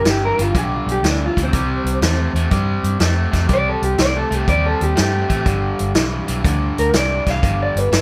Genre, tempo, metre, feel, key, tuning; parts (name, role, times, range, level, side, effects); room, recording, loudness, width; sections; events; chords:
electric blues shuffle; 122 BPM; 4/4; swing 67% on 8ths; G mixolydian; A4 = 437 Hz
electric guitar through a small old amp; melody; 0.0-8.0 s; C4 to F5; -23 LUFS; equal
crunchy overdriven guitar; riff; 0.0-8.0 s; G2 to A3; -26 LUFS; equal
vintage muted fingered electric bass; bass; 0.1-8.0 s; G1 to G2; -23 LUFS; equal
vintage drum kit; drums; 0.1-8.0 s; hi-hat, kick drum, snare drum; -23 LUFS; equal
light reverb; band playing live in one room; -18 LUFS; mono
0.0-8.0 A section
clean electric guitar solo 0.0-8.0
0.0 G; 1.5 C; 3.5 Cm; 5.5 G